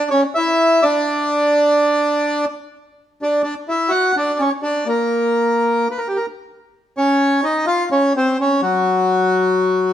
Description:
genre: tango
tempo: 128 BPM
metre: 4/4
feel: rubato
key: unclear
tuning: A4 = 440 Hz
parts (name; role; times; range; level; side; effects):
- bandoneon; solo; 0.0-9.9 s; F#3 to F#5; -15 LUFS; equal; none
room: moderate stone room reverb, RT60 1.2 s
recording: band playing live in one room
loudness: -15 LUFS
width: side -10 dB against mid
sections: 0.0-3.0 A section; 3.0-9.9 B section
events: none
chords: 0.0 C#m; 1.1 N.C.; 3.0 Dmaj9; 4.9 N.C.; 6.7 C#; 8.6 N.C.

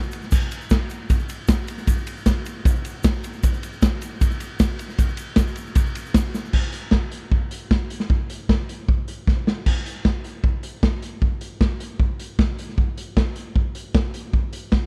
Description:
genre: rock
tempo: 154 BPM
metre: 4/4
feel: straight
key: none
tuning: none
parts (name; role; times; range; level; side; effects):
- egg shaker; percussion; 0.0-6.5 s; none; -45 LUFS; equal; none
- raw garage drum kit; drums; 0.1-14.8 s; crash cymbal, hi-hat, kick drum, ride cymbal, snare drum; -22 LUFS; equal; none
room: little or no reverb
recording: dry, close 1970s-style studio recording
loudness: -23 LUFS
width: mono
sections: 0.0-6.5 A section; 6.5-9.7 B section; 9.7-14.9 C section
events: drum fill 6.3, 9.3-9.7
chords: none

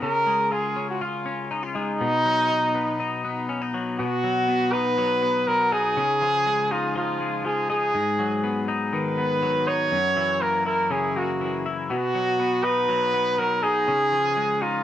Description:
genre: indie pop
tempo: 121 BPM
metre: 4/4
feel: straight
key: unclear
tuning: A4 = 440 Hz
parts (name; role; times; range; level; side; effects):
- warm trumpet; melody; 0.0-14.8 s; D#4 to C#5; -22 LUFS; right 1 dB; plate reverb
- twelve-string electric guitar; arpeggios; 0.0-14.8 s; F#2 to E#4; -27 LUFS; left 4 dB; none
room: wet studio reverb, RT60 0.6 s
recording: worn, warbling old tape, cassette tape, warbly pitch drift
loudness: -21 LUFS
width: side -11 dB against mid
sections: 0.0-4.0 A section; 4.0-14.8 B section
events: none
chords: 0.0 C#; 2.0 B; 6.0 C#add9; 7.9 G#m7; 9.9 F#7; 11.9 B; 13.9 C#add9

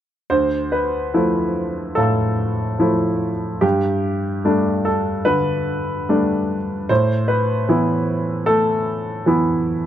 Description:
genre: neoclassical minimalist piano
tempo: 73 BPM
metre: 4/4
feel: rubato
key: unclear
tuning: A4 = 440 Hz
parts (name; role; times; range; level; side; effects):
- clear baby grand piano; solo; 0.3-9.9 s; D2 to E6; -17 LUFS; equal; none
room: little or no reverb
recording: dry, close 1970s-style studio recording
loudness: -17 LUFS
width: side -10 dB against mid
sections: 0.3-9.9 A section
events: none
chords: 0.3 Dmadd9; 3.6 Gadd9; 6.9 Asus2

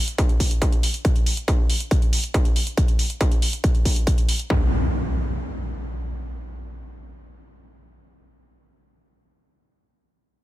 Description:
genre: uplifting trance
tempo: 139 BPM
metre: 4/4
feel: straight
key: none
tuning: none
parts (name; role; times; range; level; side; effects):
- electronic hi-hat; drums; 0.1-4.5 s; none; -28 LUFS; right 1 dB; sidechain pumping on hats, sidechain pumping on toms
- electronic kick drum; drums; 0.2-4.6 s; none; -19 LUFS; equal; distortion
- impact; sound effects; 4.5-9.0 s; none; -26 LUFS; equal; none
room: little or no reverb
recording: none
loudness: -19 LUFS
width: side -16 dB against mid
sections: 0.0-4.5 A section; 4.5-8.0 B section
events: none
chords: none

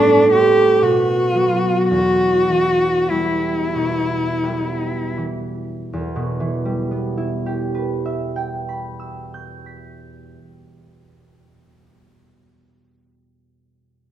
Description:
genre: classical, romantic duo for cello and harp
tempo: 38-64 BPM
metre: 3/4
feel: rubato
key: E minor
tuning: A4 = 438 Hz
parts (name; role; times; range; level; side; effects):
- dark cello; melody; 0.0-5.2 s; D4 to G4; -17 LUFS; left 2 dB; none
- concert harp; accompaniment; 0.0-11.9 s; E2 to B6; -20 LUFS; right 2 dB; none
room: wet recital hall reverb, RT60 1.6 s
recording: none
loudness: -17 LUFS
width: side -11 dB against mid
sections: 0.0-5.9 A section; 5.9-10.4 B section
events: slowing down 0.0-5.9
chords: 0.0 Am; 0.8 B5; 1.9 Em

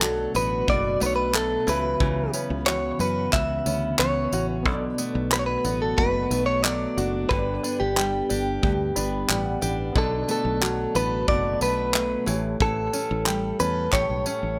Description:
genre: acoustic pop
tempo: 91 BPM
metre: 4/4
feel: straight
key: B minor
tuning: A4 = 442 Hz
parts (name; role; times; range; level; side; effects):
- direct-recorded clean electric guitar; melody; 0.0-14.6 s; G4 to E5; -28 LUFS; equal; plate reverb, tape echo
- barky reed electric piano; accompaniment; 0.0-14.6 s; A3 to B5; -39 LUFS; equal; none
- picked steel-string acoustic guitar; accompaniment; 0.0-14.6 s; G2 to A4; -32 LUFS; equal; plate reverb
- open-back banjo; arpeggios; 0.0-14.6 s; D3 to G4; -36 LUFS; equal; plate reverb
- fingered electric bass; bass; 0.0-14.6 s; F#1 to F#2; -32 LUFS; equal; none
- modern studio drum kit; drums; 0.0-14.4 s; handclaps, kick drum, tambourine; -28 LUFS; equal; none
room: light reverb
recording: none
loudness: -24 LUFS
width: mono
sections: 0.0-14.6 A section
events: reed electric piano fill 8.6-10.0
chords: 0.0 Bm7; 1.7 F#7sus4/C#; 4.7 Bm7; 7.3 G; 10.0 Bm7; 12.3 A7

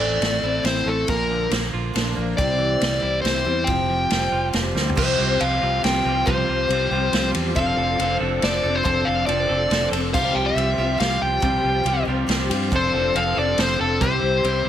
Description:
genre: folk rock and heartland rock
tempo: 139 BPM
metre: 3/4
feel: straight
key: C mixolydian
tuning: A4 = 440 Hz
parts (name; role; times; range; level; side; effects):
- dark smooth lead guitar; melody; 0.0-14.7 s; A4 to G5; -22 LUFS; left 1 dB; overdrive
- picked twelve-string acoustic guitar; accompaniment; 0.0-14.7 s; A2 to Bb4; -27 LUFS; left 4 dB; none
- clean electric guitar; riff; 0.0-14.7 s; A2 to A4; -28 LUFS; right 8 dB; none
- fingered electric bass; bass; 0.0-14.7 s; F1 to G2; -26 LUFS; right 1 dB; none
- vintage drum kit; drums; 0.2-14.5 s; crash cymbal, kick drum, ride cymbal, snare drum, toms; -26 LUFS; equal; none
- bright tonewheel organ; sustained chords; 5.0-14.7 s; F4 to D6; -34 LUFS; right 2 dB; none
room: light reverb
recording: none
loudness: -18 LUFS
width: side -10 dB against mid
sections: 0.0-5.0 A section; 5.0-14.7 B section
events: drum fill 4.8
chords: 0.0 Am; 1.1 Bb; 2.4 C; 3.7 Fsus2; 5.0 Csus4; 7.6 F6; 10.1 Csus4; 12.7 F6; 14.0 C

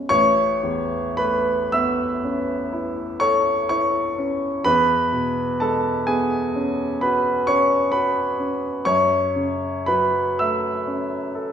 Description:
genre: classical, impressionist solo piano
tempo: 36-44 BPM (dotted quarters)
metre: 9/8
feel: rubato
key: A major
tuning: A4 = 440 Hz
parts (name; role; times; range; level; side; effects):
- warm baby grand piano; solo; 0.0-11.5 s; A1 to E6; -19 LUFS; equal; none
room: wet recital hall reverb, RT60 1.4 s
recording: heard from further back in the room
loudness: -19 LUFS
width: side -8 dB against mid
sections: 0.1-11.5 A section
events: none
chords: 0.1 Aadd9; 4.7 E69; 8.8 F#m7

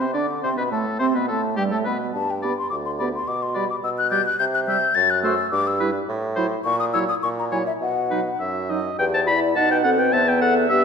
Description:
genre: quick classical-period movement for wind quintet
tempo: 106 BPM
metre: 2/4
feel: straight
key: G major, E minor from 4.4 s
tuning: A4 = 439 Hz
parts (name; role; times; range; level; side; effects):
- mellow hollow concert flute; melody; 0.0-10.8 s; G4 to A6; -23 LUFS; left 6 dB; none
- warm oboe; second line; 0.0-10.8 s; G4 to B5; -25 LUFS; left 2 dB; none
- bright clarinet; accompaniment; 0.0-10.8 s; G3 to F#5; -28 LUFS; right 7 dB; none
- warm French horn; accompaniment; 0.0-10.8 s; F#3 to G4; -28 LUFS; right 1 dB; none
- clear bassoon; bass; 0.0-10.8 s; D2 to D3; -27 LUFS; right 2 dB; none
room: wet scoring stage reverb, RT60 1.7 s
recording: dark, warm production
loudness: -19 LUFS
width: side -6 dB against mid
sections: 0.0-9.0 A section; 9.0-10.8 B section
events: none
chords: 0.4 Amadd9; 1.6 Gadd9; 2.1 G; 3.3 G/B; 4.4 C5; 5.0 F#m7; 5.5 Em/G; 6.1 F#m7/A; 6.7 F#7/A#; 7.8 B; 9.0 Em; 9.6 B; 10.1 Em

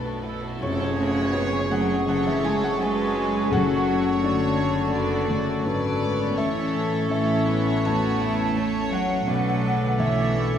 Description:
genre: cinematic, emotional film score for orchestra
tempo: 84 BPM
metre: 4/4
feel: rubato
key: F# minor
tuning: A4 = 440 Hz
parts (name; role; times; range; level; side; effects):
- rich studio violin section; melody; 0.0-10.6 s; A4 to D5; -34 LUFS; left 1 dB; none
- warm studio violin section; second line; 0.0-10.6 s; C#4 to B4; -34 LUFS; left 2 dB; none
- felt-muted upright piano; accompaniment; 0.0-10.6 s; A1 to A5; -30 LUFS; left 3 dB; none
- warm studio viola section; accompaniment; 0.0-10.6 s; F#3 to E4; -33 LUFS; right 3 dB; none
- dark French horn section; sustained chords; 0.0-10.6 s; D3 to D4; -30 LUFS; left 5 dB; none
- concert harp; arpeggios; 0.0-10.6 s; F#2 to C#6; -31 LUFS; left 6 dB; none
- rich studio double bass section; bass; 0.0-10.6 s; F#1 to B1; -31 LUFS; right 3 dB; none
- warm studio cello section; bass; 0.0-10.6 s; B2 to A3; -29 LUFS; right 3 dB; none
- clear oboe; second line; 0.6-10.6 s; C#5 to D5; -34 LUFS; right 3 dB; none
- flute section; second line; 0.6-10.6 s; C#5 to A5; -32 LUFS; right 2 dB; none
- mellow clarinet; second line; 0.6-10.6 s; G#4 to A4; -32 LUFS; equal; none
- tam-tam; percussion; 0.6-3.5 s; none; -36 LUFS; left 1 dB; none
- timpani; percussion; 3.5-4.6 s; F#2; -31 LUFS; right 1 dB; none
room: wet scoring stage reverb, RT60 1.9 s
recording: none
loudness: -21 LUFS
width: side -9 dB against mid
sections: 0.6-10.6 A section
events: band accent 0.6-1.3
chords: 0.0 Bm7; 0.6 F#madd9; 3.5 Dmaj7/F#; 6.4 A; 9.3 Bm7

